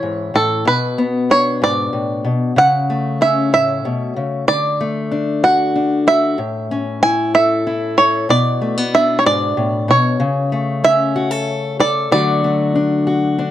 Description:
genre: folk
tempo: 63 BPM (dotted quarters)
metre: 6/8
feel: straight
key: unclear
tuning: A4 = 441 Hz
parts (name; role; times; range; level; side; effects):
- bluegrass banjo; melody; 0.0-13.3 s; A4 to G#5; -16 LUFS; right 2 dB; none
- fingerpicked old ladder-braced acoustic guitar; accompaniment; 0.0-13.5 s; G#2 to A4; -18 LUFS; left 3 dB; none
room: small room ambience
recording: dry, close 1970s-style studio recording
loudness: -14 LUFS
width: side -12 dB against mid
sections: 0.0-13.5 A section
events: none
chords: 0.0 A; 0.7 Bm; 2.6 F#m/C#; 4.5 D; 6.4 A; 8.3 Bm; 10.2 F#m/C# (rootless); 12.1 D

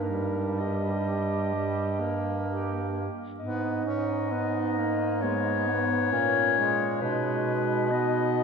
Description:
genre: classical, lyrical piece for single-reed quartet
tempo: 66 BPM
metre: 4/4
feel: rubato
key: G# minor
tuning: A4 = 440 Hz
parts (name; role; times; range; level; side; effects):
- warm clarinet; melody; 0.0-8.4 s; A#4 to D#5; -29 LUFS; left 6 dB; none
- bright alto saxophone; second line; 0.0-8.4 s; B3 to G4; -33 LUFS; right 8 dB; none
- clear tenor saxophone; accompaniment; 0.0-8.4 s; G3 to C#4; -32 LUFS; left 1 dB; none
- clear bass clarinet; bass; 0.0-8.4 s; G2 to B2; -30 LUFS; right 2 dB; none
room: wet church reverb, RT60 3.7 s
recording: none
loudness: -25 LUFS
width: side -5 dB against mid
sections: 0.0-8.4 A section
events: none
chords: 0.0 D#/G; 3.4 G#m; 7.0 G#m/B

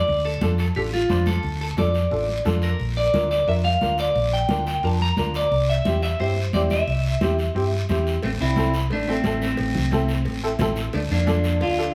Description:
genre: latin, cumbia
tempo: 177 BPM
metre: 4/4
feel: straight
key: D minor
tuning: A4 = 440 Hz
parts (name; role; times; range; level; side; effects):
- clean electric guitar; melody; 0.0-11.9 s; A3 to Bb5; -26 LUFS; equal; spring reverb, slapback echo
- hollow-body short-scale fingered electric bass; bass; 0.1-11.9 s; A1 to G2; -26 LUFS; equal; none
- congas; percussion; 0.1-11.8 s; none; -31 LUFS; equal; none
- guiro; percussion; 0.1-11.9 s; none; -38 LUFS; equal; none
- clear upright piano; accompaniment; 0.4-11.8 s; C4 to C5; -31 LUFS; equal; none
- cowbell and timbales; percussion; 8.2-11.8 s; none; -38 LUFS; equal; none
room: wet large studio reverb, RT60 0.9 s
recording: heard from further back in the room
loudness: -22 LUFS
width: mono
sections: 0.0-8.2 A section; 8.2-11.9 B section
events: none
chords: 0.0 Dm; 2.8 Bb; 5.5 C; 8.2 Am; 10.9 Dm

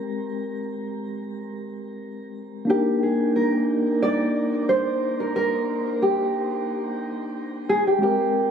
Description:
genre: sunset chillout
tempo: 90 BPM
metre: 4/4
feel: straight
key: Eb major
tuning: A4 = 440 Hz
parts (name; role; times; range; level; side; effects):
- mellow tine electric piano; accompaniment; 0.0-8.5 s; Ab3 to G5; -25 LUFS; left 1 dB; medium stereo tremolo, auto-pan, shimmer reverb, digital delay
- nylon-string guitar; melody; 2.7-8.5 s; G4 to D5; -23 LUFS; right 1 dB; shimmer reverb, digital delay
room: wet lush hall reverb, RT60 1.9 s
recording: recorded on a phone in the room, club reverb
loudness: -21 LUFS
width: side -7 dB against mid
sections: 0.0-8.5 A section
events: none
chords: 0.0 Abmaj9; 2.7 Ebmaj7

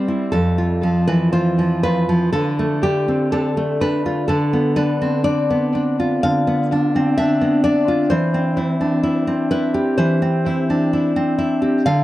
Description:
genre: romantic piece for solo classical guitar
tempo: 63 BPM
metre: 4/4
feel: rubato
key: C major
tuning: A4 = 440 Hz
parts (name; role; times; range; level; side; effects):
- nylon-string guitar; solo; 0.0-12.0 s; F2 to F5; -16 LUFS; equal; tape echo
room: moderate spring reverb, RT60 2.4 s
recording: echo-heavy mix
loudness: -16 LUFS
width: side -15 dB against mid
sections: 0.0-12.0 A section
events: none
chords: 0.4 Fmaj7#11; 2.3 Dm; 4.3 Bdim/D; 8.1 C/E

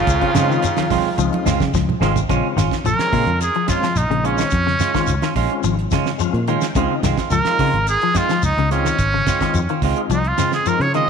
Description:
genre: afrobeat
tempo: 108 BPM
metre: 4/4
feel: straight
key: Bb minor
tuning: A4 = 440 Hz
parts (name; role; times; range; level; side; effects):
- raspy alto saxophone; melody; 0.0-1.7 s; F4; -23 LUFS; right 2 dB; none
- growling tenor saxophone; second line; 0.0-1.7 s; Db3; -27 LUFS; right 9 dB; tape echo
- raspy baritone saxophone; second line; 0.0-1.7 s; F2; -29 LUFS; left 11 dB; none
- clean electric guitar; arpeggios; 0.0-11.1 s; Db3 to F3; -24 LUFS; left 11 dB; none
- fingered electric bass; bass; 0.1-11.0 s; Ab1 to Db3; -21 LUFS; equal; none
- cloth-damped thuddy drum kit; drums; 0.1-11.1 s; hi-hat, kick drum, snare drum, toms; -26 LUFS; right 4 dB; none
- shekere; percussion; 0.1-11.1 s; none; -26 LUFS; left 5 dB; none
- semi-hollow electric guitar; stabs; 0.2-11.1 s; Ab3 to F4; -24 LUFS; right 10 dB; none
- overdriven tonewheel organ; accompaniment; 0.3-10.9 s; Ab3 to G5; -29 LUFS; left 12 dB; slow rotary speaker, chorus vibrato
- congas; percussion; 0.4-2.3 s; none; -26 LUFS; right 10 dB; none
- bright trumpet; melody; 2.9-11.1 s; Db4 to Eb5; -20 LUFS; right 2 dB; none
room: moderate echo chamber reverb, RT60 2.3 s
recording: 1960s-style stereo with parts hard left and right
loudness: -16 LUFS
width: side -6 dB against mid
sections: 0.0-2.3 A section; 2.3-11.1 B section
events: drum fill 1.6-2.3; trumpet solo 2.3-11.1; tonewheel organ fill 5.9-6.8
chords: 0.0 Dbmaj7; 2.3 Bbm7; 6.8 Dbmaj7

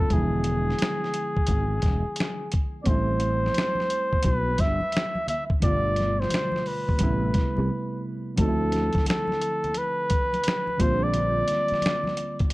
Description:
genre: R&B, neo-soul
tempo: 87 BPM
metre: 4/4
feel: swing 64% on 16ths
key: A minor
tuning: A4 = 440 Hz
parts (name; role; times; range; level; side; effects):
- warm flugelhorn; melody; 0.0-12.4 s; G#4 to E5; -27 LUFS; equal; none
- barky reed electric piano; accompaniment; 0.0-12.5 s; B2 to F4; -31 LUFS; right 2 dB; overdrive
- sustaining fretless electric bass; bass; 0.0-11.7 s; E1 to D2; -26 LUFS; equal; ensemble chorus
- dusty soul sampler-style drum kit; drums; 0.1-12.5 s; finger snaps, hi-hat, kick drum, snare drum; -26 LUFS; equal; none
- congas; percussion; 2.9-12.5 s; none; -38 LUFS; left 1 dB; none
room: light reverb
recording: none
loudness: -22 LUFS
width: side -20 dB against mid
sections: 0.0-8.4 A section; 8.4-12.5 B section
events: break 7.7-8.4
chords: 0.1 E7b9; 2.9 Am7; 5.6 G7; 7.0 Am9; 8.4 Dm7; 10.8 Bb69

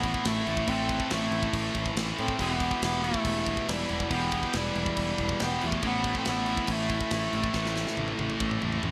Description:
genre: heavy metal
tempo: 140 BPM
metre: 4/4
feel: straight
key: unclear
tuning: A4 = 440 Hz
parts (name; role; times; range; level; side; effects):
- clear bass clarinet; melody; 0.0-8.9 s; G3 to C4; -34 LUFS; equal; delay
- nasal lead guitar with a parked wah; second line; 0.0-8.8 s; E4 to A4; -40 LUFS; equal; overdrive
- crunchy overdriven guitar; riff; 0.0-8.9 s; A2 to E4; -40 LUFS; equal; none
- high-gain distorted guitar; riff; 0.0-8.9 s; E2 to A3; -36 LUFS; equal; distortion
- tight distorted guitar; riff; 0.0-8.9 s; E2 to A3; -39 LUFS; equal; none
- overdriven picked electric bass; bass; 0.0-8.9 s; E1 to A2; -36 LUFS; equal; none
- tight metal drum kit; drums; 0.0-8.9 s; crash cymbal, kick drum, snare drum, toms; -37 LUFS; equal; gated reverb
room: moderate lush hall reverb, RT60 1.6 s, studio reverb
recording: bright 1980s-style digital production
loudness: -28 LUFS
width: mono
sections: 0.0-8.9 A section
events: drum fill 7.5-8.9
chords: 0.0 Am; 2.4 Em; 5.8 Am

